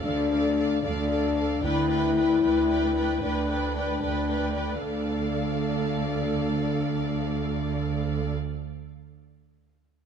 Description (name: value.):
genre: cinematic.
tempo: 75 BPM (dotted quarters).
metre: 12/8.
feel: straight.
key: D dorian.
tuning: A4 = 438 Hz.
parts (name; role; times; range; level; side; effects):
warm chamber violin section; melody; 0.0-8.3 s; F5 to G5; -37 LUFS; left 2 dB; none.
warm symphonic violin section; second line; 0.0-8.3 s; D5; -37 LUFS; left 3 dB; none.
warm symphonic viola section; accompaniment; 0.0-8.3 s; A4 to B4; -34 LUFS; right 3 dB; none.
dark French horn section; sustained chords; 0.0-8.3 s; D4 to E4; -27 LUFS; left 5 dB; none.
rich symphonic cello section; bass; 0.0-8.3 s; D2; -31 LUFS; right 4 dB; none.
rich studio double bass section; bass; 1.6-8.3 s; D2; -30 LUFS; right 8 dB; none.
room: moderate concert hall reverb, RT60 2.0 s.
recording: dark, warm production.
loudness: -24 LUFS.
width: side -7 dB against mid.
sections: 0.0-4.8 A section; 4.8-8.0 B section.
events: none.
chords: 0.0 Dm; 1.6 G/D; 4.8 Dm.